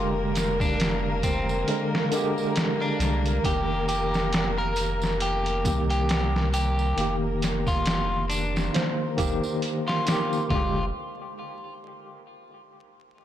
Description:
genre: trip hop.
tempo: 68 BPM.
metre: 4/4.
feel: swing 57% on 16ths.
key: F dorian.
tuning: A4 = 440 Hz.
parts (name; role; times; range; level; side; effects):
electric guitar at the edge of break-up; melody; 0.0-10.8 s; C4 to Bb4; -30 LUFS; equal; spring reverb, tape echo.
tine electric piano; accompaniment; 0.0-10.9 s; D3 to C5; -29 LUFS; equal; medium stereo tremolo, tape echo.
muted chamber violin section; sustained chords; 0.0-10.5 s; Bb3 to Bb4; -32 LUFS; left 1 dB; none.
soft dub sub bass; bass; 0.0-10.9 s; F1 to C2; -29 LUFS; equal; none.
trip hop sampler-style drum kit; drums; 0.4-10.7 s; hi-hat, kick drum, snare drum, toms; -28 LUFS; right 1 dB; vintage 12-bit sampler grit.
tambourine; percussion; 0.4-10.5 s; none; -41 LUFS; right 6 dB; none.
room: light reverb, digital ambience.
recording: blown-out, overdriven recording, vinyl crackle, overdrive.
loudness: -23 LUFS.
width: side -11 dB against mid.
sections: 0.0-10.5 A section; 10.5-13.2 B section.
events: none.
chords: 0.0 Fm69; 3.4 Eb/F; 10.5 Fm69.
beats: 0.80 1.68 2.56 | 3.44 4.33 5.21 6.09 | 6.97 7.86 8.74 9.62 | 10.50.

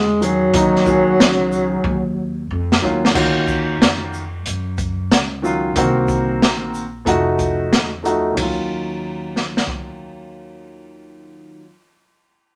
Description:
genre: hip hop, jazz-hop.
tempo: 92 BPM.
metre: 4/4.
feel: swing 64% on 16ths.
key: Eb minor.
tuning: A4 = 439 Hz.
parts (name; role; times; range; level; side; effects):
breathy alto saxophone; melody; 0.0-2.5 s; Gb3 to Ab3; -19 LUFS; equal; none.
upright bass; bass; 0.0-11.6 s; F1 to Gb2; -28 LUFS; equal; none.
warm upright piano; accompaniment; 0.2-11.7 s; Eb3 to Ab4; -22 LUFS; equal; low-pass filter.
open jazz drum kit; drums; 0.2-9.9 s; crash cymbal, hi-hat, kick drum, ride cymbal, shaker, snare drum; -21 LUFS; equal; none.
room: moderate studio reverb, RT60 0.8 s.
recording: none.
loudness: -18 LUFS.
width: mono.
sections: 0.0-3.1 A section; 3.1-8.4 B section; 8.4-11.0 C section.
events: drum fill 1.8-3.1; filter sweep on upright piano 3.1-8.4.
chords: 0.0 Ebm9; 5.8 Cm7b5; 7.1 F7b9; 8.4 Ebm9.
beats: | 0.54 1.19 1.84 2.50 | 3.15 3.80 4.45 5.11 | 5.76 6.41 7.06 7.71 | 8.37 9.02 9.67 10.32.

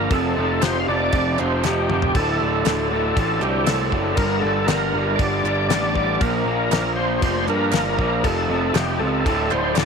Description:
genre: classic rock.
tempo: 118 BPM.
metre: 4/4.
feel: straight.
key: D minor.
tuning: A4 = 440 Hz.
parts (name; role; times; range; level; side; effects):
overdriven tonewheel organ; melody; 0.0-9.9 s; G4 to F5; -23 LUFS; equal; slow rotary speaker, chorus vibrato, slapback echo.
raw garage guitar; riff; 0.0-9.9 s; D2 to Bb3; -23 LUFS; equal; overdrive.
fuzz picked electric bass; bass; 0.0-9.9 s; D1 to G2; -25 LUFS; right 1 dB; overdrive.
damped 70s drum kit; drums; 0.1-9.9 s; crash cymbal, kick drum, snare drum, toms; -26 LUFS; left 3 dB; none.
group handclap; percussion; 0.6-9.9 s; none; -31 LUFS; right 17 dB; none.
room: light reverb, small room reverb.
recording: 1960s-style stereo.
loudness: -18 LUFS.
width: side -6 dB against mid.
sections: 0.0-9.9 A section.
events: drum fill 1.6-2.1.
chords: 0.1 F; 2.1 D5; 4.2 Gmadd9; 6.2 Bb5; 8.2 F; 9.3 D5.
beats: | 0.10 0.61 1.12 1.63 | 2.14 2.65 3.15 3.66 | 4.17 4.68 5.19 5.70 | 6.21 6.72 7.23 7.74 | 8.24 8.75 9.26 9.77.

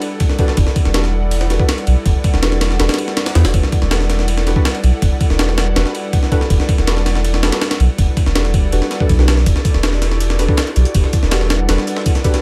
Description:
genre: drum and bass, jungle.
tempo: 162 BPM.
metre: 4/4.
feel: straight.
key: E minor.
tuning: A4 = 440 Hz.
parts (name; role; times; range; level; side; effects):
airy breathy pad; sustained chords; 0.0-12.4 s; G3 to F#5; -27 LUFS; equal; chorus, vintage 12-bit sampler grit.
deep mellow chord stab; stabs; 0.0-12.4 s; D4 to B4; -26 LUFS; equal; chorus, dub echo.
breakbeat sampler-style drum kit; drums; 0.0-12.4 s; kick drum, ride cymbal, snare drum; -18 LUFS; equal; none.
soft dub sub bass; bass; 0.6-11.8 s; E1 to E2; -18 LUFS; equal; none.
breakbeat sampler-style drum kit; drums; 9.5-12.4 s; hi-hat, snare drum, tambourine; -31 LUFS; equal; high-pass filter on perc, high-pass filter on snare, high-pass filter on hats, high-pass filter on room.
room: digital ambience.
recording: none.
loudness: -15 LUFS.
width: mono.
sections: 0.0-12.4 A section.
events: none.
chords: 0.0 Em11.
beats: 0.21 | 0.58 0.95 1.32 1.69 | 2.06 2.43 2.80 3.17 | 3.54 3.91 4.28 4.65 | 5.02 5.39 5.76 6.13 | 6.50 6.87 7.24 7.61 | 7.98 8.35 8.72 9.10 | 9.46 9.84 10.21 10.58 | 10.95 11.32 11.69 12.06.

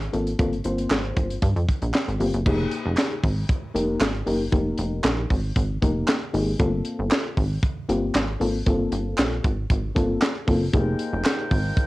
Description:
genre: early-eighties boogie funk.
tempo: 116 BPM.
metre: 4/4.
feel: straight.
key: F minor.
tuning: A4 = 440 Hz.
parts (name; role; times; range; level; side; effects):
plucky analog bass; bass; 0.0-11.7 s; F1 to G2; -26 LUFS; equal; transformer saturation.
tight funk drum kit; drums; 0.0-11.9 s; crash cymbal, handclaps, hi-hat, kick drum, snare drum; -24 LUFS; equal; none.
FM electric piano with tremolo; accompaniment; 0.1-11.4 s; A3 to C5; -26 LUFS; left 2 dB; cassette tape.
group handclap; percussion; 0.9-11.4 s; none; -33 LUFS; right 2 dB; none.
warm woodwind section; sustained chords; 10.7-11.9 s; F3 to G5; -30 LUFS; equal; cassette tape.
room: little or no reverb.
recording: home recording on cassette.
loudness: -21 LUFS.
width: side -19 dB against mid.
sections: 0.0-2.5 A section; 2.5-11.9 B section.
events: none.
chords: 0.0 Gm11; 2.5 Fm11; 6.6 Gm11; 10.7 Fm11.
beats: | 0.39 0.91 1.42 1.94 | 2.46 2.98 3.49 4.01 | 4.53 5.04 5.56 6.08 | 6.60 7.11 7.63 8.15 | 8.67 9.18 9.70 10.22 | 10.73 11.25 11.77.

